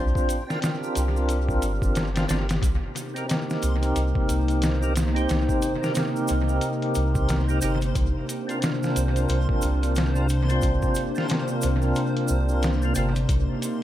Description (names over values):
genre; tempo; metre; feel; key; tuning
trip hop; 90 BPM; 4/4; swing 60% on 16ths; unclear; A4 = 440 Hz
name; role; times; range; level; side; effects
percussive tonewheel organ; accompaniment; 0.0-13.1 s; C4 to C5; -28 LUFS; right 1 dB; slow rotary speaker, tremolo, tape echo
soft dub sub bass; bass; 0.0-13.5 s; G1 to C2; -24 LUFS; equal; none
backwards swelling texture; texture; 0.0-13.8 s; G4 to C5; -37 LUFS; right 1 dB; built-in reverb
trip hop sampler-style drum kit; drums; 0.2-13.8 s; hi-hat, kick drum, snare drum; -27 LUFS; equal; analog delay
tube shaker; percussion; 0.2-13.8 s; none; -39 LUFS; right 4 dB; analog delay
warbly tape-like pad; sustained chords; 2.8-13.8 s; C3 to Eb4; -27 LUFS; equal; chorus, built-in reverb
room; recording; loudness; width
digital ambience; echo-heavy mix; -21 LUFS; side -13 dB against mid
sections
0.0-13.8 A section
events
none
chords
0.0 Bbadd9/C; 2.6 Cm7; 8.0 Bbadd9/C; 13.3 Cm7